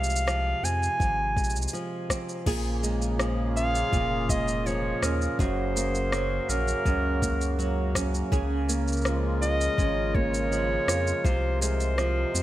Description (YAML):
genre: folktronica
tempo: 82 BPM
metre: 4/4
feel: straight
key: Bb minor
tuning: A4 = 440 Hz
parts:
  - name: clear clarinet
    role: melody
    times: 0.0-12.4 s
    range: Bb4 to Ab5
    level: -29 LUFS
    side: right 1 dB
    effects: tape echo
  - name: flamenco guitar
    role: arpeggios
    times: 0.0-12.4 s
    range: Gb2 to Ab4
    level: -31 LUFS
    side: right 2 dB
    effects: tape echo
  - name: warm sub bass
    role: bass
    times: 0.0-12.4 s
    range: F1 to F2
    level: -29 LUFS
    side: equal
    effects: none
  - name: organic electronic drum kit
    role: drums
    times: 0.0-12.4 s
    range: crash cymbal, rim click, shaker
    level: -32 LUFS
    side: equal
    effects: small room reverb
  - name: electronic kick drum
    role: drums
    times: 1.0-11.4 s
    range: none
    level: -27 LUFS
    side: equal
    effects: small room reverb
  - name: hand-pumped harmonium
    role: sustained chords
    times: 2.5-12.4 s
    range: C3 to Bb4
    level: -33 LUFS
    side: left 1 dB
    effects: none
room: light reverb, small room ambience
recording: none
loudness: -24 LUFS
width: side -14 dB against mid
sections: 0.0-12.4 A section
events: none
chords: 0.0 Fm/C; 2.5 Bbm7; 5.4 Gb; 8.3 Db6; 11.2 Fm/C